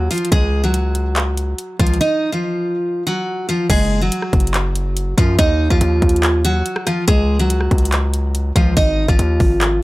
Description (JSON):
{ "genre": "hip hop, trap", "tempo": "142 BPM", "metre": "4/4", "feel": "half-time", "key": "unclear", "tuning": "A4 = 440 Hz", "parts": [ { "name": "picked steel-string acoustic guitar", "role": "melody", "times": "0.0-9.8 s", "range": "E#3 to D#5", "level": "-18 LUFS", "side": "equal", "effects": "none" }, { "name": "hard-hitting 808-style bass", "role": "bass", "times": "0.0-9.8 s", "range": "F#1 to F#2", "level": "-18 LUFS", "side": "equal", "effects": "none" }, { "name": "trap drum kit", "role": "drums", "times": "0.1-9.7 s", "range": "crash cymbal, handclaps, hi-hat, kick drum, rim click", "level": "-18 LUFS", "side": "equal", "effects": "none" } ], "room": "little or no reverb", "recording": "dry, gritty hardware recording", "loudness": "-14 LUFS", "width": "side -19 dB against mid", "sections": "0.0-3.7 A section; 3.7-9.8 B section", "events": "none", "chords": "0.3 C#; 2.0 D#madd9/E#; 3.7 F#sus2; 5.4 D#m; 7.1 C#; 8.8 G#5" }